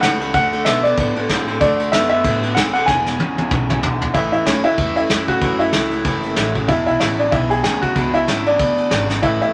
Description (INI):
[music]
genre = rockabilly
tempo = 189 BPM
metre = 4/4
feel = swing 58% on 8ths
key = A major from 4.1 s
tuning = A4 = 439 Hz
[part]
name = clear upright piano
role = melody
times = 0.0-9.5 s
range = C#4 to G#5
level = -20 LUFS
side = equal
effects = none
[part]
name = picked steel-string acoustic guitar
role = accompaniment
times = 0.0-9.5 s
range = E2 to F#4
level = -30 LUFS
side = equal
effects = none
[part]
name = electric guitar through a small old amp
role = riff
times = 0.0-9.5 s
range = E2 to C4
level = -26 LUFS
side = equal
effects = none
[part]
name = upright bass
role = bass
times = 0.0-9.5 s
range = E1 to B2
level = -29 LUFS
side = equal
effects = none
[part]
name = soft brush drum kit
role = drums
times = 0.0-9.5 s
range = kick drum, ride cymbal, snare drum, toms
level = -23 LUFS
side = equal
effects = none
[sound]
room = moderate studio reverb, RT60 0.7 s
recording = none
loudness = -17 LUFS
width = mono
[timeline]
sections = 0.0-4.1 A section; 4.1-9.5 B section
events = drum fill 2.9-4.1, 9.1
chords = 0.3 D; 2.9 E7; 4.1 A; 6.7 E7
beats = 0.02 | 0.34 0.66 0.97 1.29 | 1.61 1.93 2.24 2.56 | 2.88 3.19 3.51 3.83 | 4.15 4.46 4.78 5.10 | 5.42 5.73 6.05 6.37 | 6.69 7.00 7.32 7.64 | 7.96 8.27 8.59 8.91 | 9.23